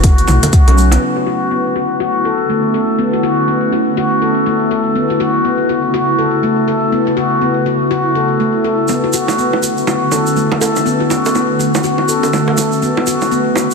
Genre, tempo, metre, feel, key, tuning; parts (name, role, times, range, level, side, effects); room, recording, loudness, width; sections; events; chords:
afro house; 122 BPM; 4/4; swing 60% on 16ths; B minor; A4 = 442 Hz
ethereal airy pad; sustained chords; 0.0-13.7 s; C#3 to F#4; -18 LUFS; right 1 dB; ensemble chorus, built-in reverb, sidechain pumping
handpan; arpeggios; 0.0-13.7 s; F#3 to A4; -14 LUFS; left 3 dB; vintage 12-bit sampler grit, sidechain pumping, low-pass filter, ping-pong delay
round analog bass; bass; 0.0-1.0 s; F#1 to B1; -12 LUFS; equal; sidechain pumping
deep house drum kit; drums; 0.0-1.0 s; hi-hat, toms; -19 LUFS; right 1 dB
electronic kick drum; drums; 0.0-0.6 s; -10 LUFS; equal
bongos; percussion; 0.0-1.0, 8.9-13.7 s; -22 LUFS; right 5 dB
congas; percussion; 0.0-0.8 s; -22 LUFS; left 2 dB
egg shaker; percussion; 0.0-1.0, 8.9-13.7 s; -23 LUFS; right 5 dB
moderate lush hall reverb, RT60 2.8 s; dense, heavily limited modern master; -12 LUFS; side -4 dB against mid
0.0-1.0 A section; 1.0-13.7 B section
0.0 A; 1.0 Bm11; 5.0 A; 8.9 Bm11; 12.8 A